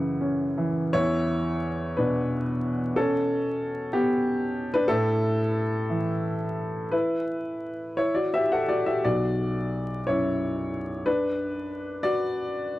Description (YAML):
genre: neoclassical minimalist piano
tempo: 52-63 BPM (dotted quarters)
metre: 6/8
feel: rubato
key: E dorian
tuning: A4 = 440 Hz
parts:
  - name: clear baby grand piano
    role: solo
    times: 0.0-12.8 s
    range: B1 to F#5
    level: -24 LUFS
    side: equal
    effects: none
room: studio ambience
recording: dry, close 1970s-style studio recording, vinyl crackle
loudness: -24 LUFS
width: side -16 dB against mid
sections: 0.9-12.8 A section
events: none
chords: 0.0 F#7(no3); 0.9 Em7; 4.9 Asus2; 9.0 Bm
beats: | 0.95 1.98 | 2.96 3.94 | 4.90 5.89 | 6.92 7.99 | 9.03 10.06 | 11.06 12.04